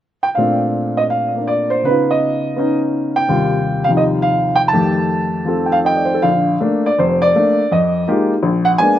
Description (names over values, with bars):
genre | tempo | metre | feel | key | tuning
solo jazz | 164 BPM | 4/4 | swing 65% on 8ths, rubato | Bb major | A4 = 440 Hz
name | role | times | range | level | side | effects
warm baby grand piano | solo | 0.2-9.0 s | F1 to A5 | -13 LUFS | equal | none
room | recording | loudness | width
light reverb | recorded outdoors, with no room sound | -14 LUFS | side -11 dB against mid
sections
0.4-6.2 A section; 6.2-9.0 B section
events
none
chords
0.4 Bbmaj9; 1.8 Db9; 3.3 Eb69; 4.7 F9; 6.2 Bbmaj7; 7.7 Fm11; 8.4 Bb7b9